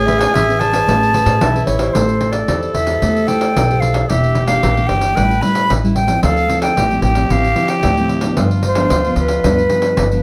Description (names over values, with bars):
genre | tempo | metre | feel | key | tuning
samba and choro | 112 BPM | 4/4 | straight | A minor | A4 = 438 Hz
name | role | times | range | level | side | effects
reedy concert flute | melody | 0.0-10.2 s | B4 to B5 | -20 LUFS | equal | none
growling tenor saxophone | second line | 0.0-10.2 s | E4 to B4 | -24 LUFS | equal | none
nylon-string guitar | accompaniment | 0.0-10.2 s | G2 to C5 | -22 LUFS | equal | none
upright bass | bass | 0.0-10.2 s | E1 to A2 | -21 LUFS | equal | none
pandeiro | percussion | 0.1-10.2 s | none | -23 LUFS | equal | none
room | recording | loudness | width
moderate studio reverb, RT60 0.5 s | none | -15 LUFS | mono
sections
0.0-2.0 A section; 2.0-10.2 B section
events
none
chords
0.0 Amaj9; 2.0 Am7; 4.1 Em7b5; 5.2 A7; 6.2 Dm9; 8.4 G7